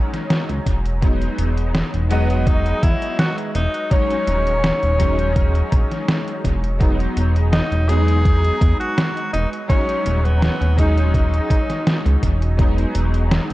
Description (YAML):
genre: vaporwave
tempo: 83 BPM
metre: 4/4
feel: straight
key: unclear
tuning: A4 = 442 Hz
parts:
  - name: clear electric grand piano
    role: accompaniment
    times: 0.0-13.5 s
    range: F#3 to D#5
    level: -24 LUFS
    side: left 1 dB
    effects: ensemble chorus, vintage 12-bit sampler grit, tape echo
  - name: detuned 8-bit digital drum machine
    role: drums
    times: 0.1-13.5 s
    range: hi-hat, snare drum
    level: -22 LUFS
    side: equal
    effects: tape echo
  - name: chorused synth bass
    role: bass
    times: 0.5-13.5 s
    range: D#1 to E2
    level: -18 LUFS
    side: equal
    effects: none
  - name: electronic kick drum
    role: drums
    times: 0.7-12.7 s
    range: none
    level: -18 LUFS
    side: equal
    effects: none
  - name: edgy tenor saxophone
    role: melody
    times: 2.1-12.2 s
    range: B3 to G#4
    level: -24 LUFS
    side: left 1 dB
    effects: tape echo
room: little or no reverb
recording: echo-heavy mix, cassette tape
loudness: -16 LUFS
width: side -17 dB against mid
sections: 0.0-13.5 A section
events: none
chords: 0.0 Emaj13; 1.0 Emaj9; 3.9 F#7sus2/D#; 6.8 Emaj9; 9.7 Emaj13/D#; 12.6 Emaj9